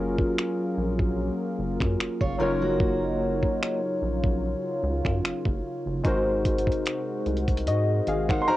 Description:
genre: contemporary R&B.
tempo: 74 BPM.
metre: 4/4.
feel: swing 54% on 16ths.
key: unclear.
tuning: A4 = 440 Hz.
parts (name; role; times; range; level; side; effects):
warm analog keys; accompaniment; 0.0-8.6 s; Gb3 to Gb5; -28 LUFS; left 2 dB; chorus, cassette tape.
chorused pulse-width pad; sustained chords; 0.0-8.6 s; C3 to Gb4; -32 LUFS; right 2 dB; cassette tape.
rubbery square bass; bass; 0.0-8.4 s; Gb1 to Ab2; -29 LUFS; equal; none.
dusty soul sampler-style drum kit; drums; 0.2-8.5 s; finger snaps, hi-hat, kick drum; -27 LUFS; equal; vintage 12-bit sampler grit, cassette tape.
fingerpicked steel-string acoustic guitar; arpeggios; 2.2-8.6 s; Bb3 to Db5; -30 LUFS; right 4 dB; cassette tape, analog delay.
warm grand piano; melody; 8.4-8.6 s; Bb5 to C6; -21 LUFS; right 1 dB; cassette tape.
room: moderate booth ambience, RT60 0.2 s.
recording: home recording on cassette.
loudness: -24 LUFS.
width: side -15 dB against mid.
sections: 0.0-8.6 A section.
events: none.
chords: 0.0 Gbmaj7; 2.4 Ebm7/Gb; 6.0 Ab7.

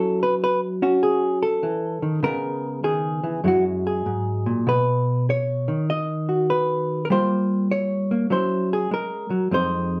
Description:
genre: solo jazz.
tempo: 99 BPM.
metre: 4/4.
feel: swing 67% on 8ths.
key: unclear.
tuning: A4 = 441 Hz.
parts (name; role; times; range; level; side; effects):
hollow-body jazz guitar; solo; 0.0-10.0 s; F2 to Eb5; -23 LUFS; equal; none.
room: wet club reverb, RT60 0.5 s.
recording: heard from further back in the room.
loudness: -23 LUFS.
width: mono.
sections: 0.0-10.0 A section.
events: none.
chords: 0.0 Gbm7; 2.2 Dbm7; 3.4 Gb9; 4.7 Cb; 7.1 Gm7b5; 8.3 Gb7.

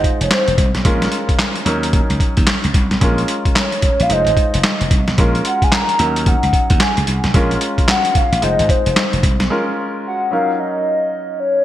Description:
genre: R&B, new jack swing.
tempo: 111 BPM.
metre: 4/4.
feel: swing 62% on 16ths.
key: Bb minor.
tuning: A4 = 440 Hz.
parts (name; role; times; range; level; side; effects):
hollow clarinet-like synth lead; melody; 0.0-11.6 s; C5 to Bb5; -19 LUFS; left 1 dB; chorus.
clear baby grand piano; accompaniment; 0.0-11.6 s; Gb3 to C5; -22 LUFS; equal; none.
slap bass; bass; 0.0-9.5 s; F1 to Eb2; -19 LUFS; equal; none.
boom bap sampler-style drum kit; drums; 0.0-9.5 s; handclaps, hi-hat, kick drum, snare drum; -16 LUFS; equal; gated reverb.
room: moderate lush hall reverb, RT60 2.3 s.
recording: bright 1980s-style digital production.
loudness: -13 LUFS.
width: side -13 dB against mid.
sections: 0.0-11.6 A section.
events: break 9.5-11.6.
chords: 0.0 Fm7; 0.9 Bbm7; 1.7 Ebm7; 3.0 Bbm7; 4.1 Fm7; 5.2 Bbm7; 6.0 Ebm7; 7.3 Bbm7; 8.4 Fm7; 9.5 Bbm7; 10.3 Ebm7.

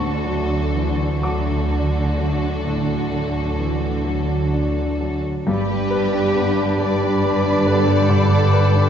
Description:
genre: classical, romantic movement for piano and orchestra.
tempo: 41-48 BPM (dotted quarters).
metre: 12/8.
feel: rubato.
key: D major, G major from 5.5 s.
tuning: A4 = 440 Hz.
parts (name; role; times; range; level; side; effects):
clear grand piano; melody; 0.0-8.9 s; D2 to D6; -23 LUFS; left 2 dB; none.
rich studio violin section; melody; 0.0-8.9 s; A4 to D5; -30 LUFS; left 3 dB; none.
warm studio violin section; second line; 0.0-8.9 s; F#4 to B4; -29 LUFS; right 1 dB; none.
dark studio viola section; accompaniment; 0.0-8.9 s; D4; -28 LUFS; right 1 dB; none.
warm studio cello section; bass; 0.0-8.9 s; G2 to D3; -25 LUFS; right 1 dB; none.
warm studio double bass section; bass; 0.0-8.9 s; G1 to D2; -22 LUFS; right 1 dB; none.
bright clarinet; second line; 5.5-8.9 s; G4; -28 LUFS; equal; none.
flute section; second line; 5.5-8.9 s; B5; -29 LUFS; equal; none.
warm oboe; second line; 5.5-8.9 s; D5; -31 LUFS; left 1 dB; none.
mellow bassoon; accompaniment; 5.5-8.9 s; G3; -28 LUFS; right 3 dB; none.
warm French horn section; sustained chords; 6.4-7.8 s; B3 to D4; -30 LUFS; left 2 dB; none.
room: wet scoring stage reverb, RT60 1.6 s.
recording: heard from further back in the room, nothing above 7.7 kHz.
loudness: -17 LUFS.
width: side -8 dB against mid.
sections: 0.0-5.5 A section; 5.5-8.9 B section.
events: none.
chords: 0.0 D; 5.5 G.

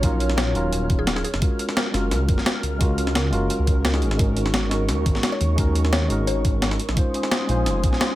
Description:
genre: liquid drum and bass.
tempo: 173 BPM.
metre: 4/4.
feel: straight.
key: unclear.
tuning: A4 = 440 Hz.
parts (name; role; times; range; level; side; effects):
mallet-like synth pluck; melody; 0.0-1.3, 5.3-6.5 s; Ab4 to Db5; -32 LUFS; left 3 dB; chorus, phaser, tape echo.
tine electric piano; accompaniment; 0.0-8.2 s; Gb3 to C5; -26 LUFS; equal; dub echo.
airy breathy pad; sustained chords; 0.0-8.2 s; Db4 to F6; -31 LUFS; right 2 dB; chorus, sidechain pumping.
dark detuned saw bass; bass; 0.0-7.9 s; Eb1 to Eb2; -23 LUFS; equal; none.
breakbeat sampler-style drum kit; drums; 0.0-8.1 s; hi-hat, snare drum; -25 LUFS; equal; small room ambience.
electronic kick drum; drums; 0.0-7.9 s; none; -21 LUFS; equal; small room ambience.
room: digital ambience.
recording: none.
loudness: -19 LUFS.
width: side -15 dB against mid.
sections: 0.0-8.2 A section.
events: none.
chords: 0.0 Ebm9; 1.2 Gbmaj7; 4.0 Ab9sus4; 6.8 Bbm11.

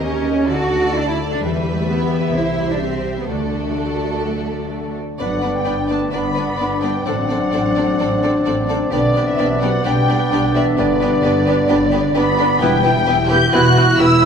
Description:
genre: classical, dramatic, fast romantic movement for symphony orchestra.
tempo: 129 BPM.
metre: 4/4.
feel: straight.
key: G major.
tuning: A4 = 440 Hz.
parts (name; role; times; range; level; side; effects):
dark symphonic violin section; melody; 0.0-14.3 s; D5 to G6; -26 LUFS; left 4 dB; none.
warm symphonic violin section; second line; 0.0-14.3 s; G4 to D5; -28 LUFS; left 2 dB; none.
warm symphonic viola section; accompaniment; 0.0-14.3 s; B3 to A4; -26 LUFS; right 1 dB; none.
concert harp; arpeggios; 0.0-14.3 s; E2 to E5; -24 LUFS; left 4 dB; none.
rich symphonic double bass section; bass; 0.0-14.3 s; E1 to E2; -23 LUFS; right 1 dB; none.
warm symphonic cello section; bass; 0.0-14.3 s; D3 to G4; -23 LUFS; right 4 dB; none.
clear clarinet; second line; 5.2-13.7 s; D4 to E4; -27 LUFS; equal; none.
mellow small flute group; second line; 5.2-14.3 s; D5 to G6; -22 LUFS; equal; none.
warm oboe; second line; 5.2-13.7 s; B4 to D5; -26 LUFS; equal; none.
mellow bassoon; accompaniment; 5.2-13.7 s; B3 to C4; -24 LUFS; right 2 dB; none.
mellow French horn section; sustained chords; 5.2-14.3 s; B3 to E4; -23 LUFS; left 2 dB; none.
room: wet recital hall reverb, RT60 1.7 s.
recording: minimal, uncompressed stereo recording.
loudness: -15 LUFS.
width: side -7 dB against mid.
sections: 0.0-5.2 A section; 5.2-14.3 B section.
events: none.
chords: 0.0 Eb7; 0.5 D; 1.4 Em; 2.4 C; 3.3 D; 5.2 G; 7.1 D7/A; 8.9 G/B; 10.8 G; 12.6 Em.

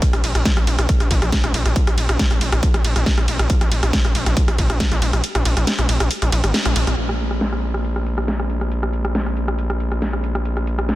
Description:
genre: driving peak-time techno.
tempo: 138 BPM.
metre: 4/4.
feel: straight.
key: unclear.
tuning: A4 = 440 Hz.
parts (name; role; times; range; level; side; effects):
electronic kick drum; drums; 0.0-4.9 s; none; -18 LUFS; equal; distortion.
techno drum kit; drums; 0.0-11.0 s; crash cymbal, hi-hat, ride cymbal, rim click, snare drum; -22 LUFS; equal; low-pass filter on snare, sidechain pumping on hats, low-pass filter on hats, sidechain pumping on cymbals, low-pass filter on cymbals, low-pass filter on room.
gritty driven synth bass; bass; 0.1-11.0 s; Ab1 to Bb1; -20 LUFS; equal; sidechain pumping.
room: light reverb.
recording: dense, heavily limited modern master.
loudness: -17 LUFS.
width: side -16 dB against mid.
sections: 0.0-7.0 A section; 7.0-11.0 B section.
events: drop 0.0-7.0; kick drops out 5.2-7.0; band accent 6.5.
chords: none.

